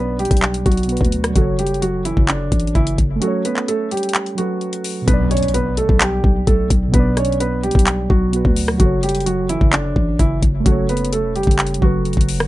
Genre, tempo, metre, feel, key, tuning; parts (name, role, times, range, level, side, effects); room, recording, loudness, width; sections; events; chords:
hip hop, trap; 129 BPM; 4/4; half-time; B minor; A4 = 440 Hz
felt-muted upright piano; melody; 0.0-12.5 s; D3 to C#5; -21 LUFS; right 1 dB; ping-pong delay
muted felt-like synth keys; accompaniment; 0.0-12.5 s; B2 to D5; -25 LUFS; right 2 dB; chorus
growling 808-style bass; bass; 0.0-12.5 s; E1 to D2; -20 LUFS; equal
trap drum kit; drums; 0.2-12.5 s; handclaps, hi-hat, kick drum, rim click; -17 LUFS; equal
impact; sound effects; 5.2-6.9 s; -26 LUFS; equal
little or no reverb; nothing above 11.0 kHz; -15 LUFS; side -16 dB against mid
0.0-5.1 A section; 5.1-12.5 B section
break 3.2-5.1; impact 5.1-6.9
0.0 Bm; 1.4 F#m; 5.1 Bm; 8.8 F#m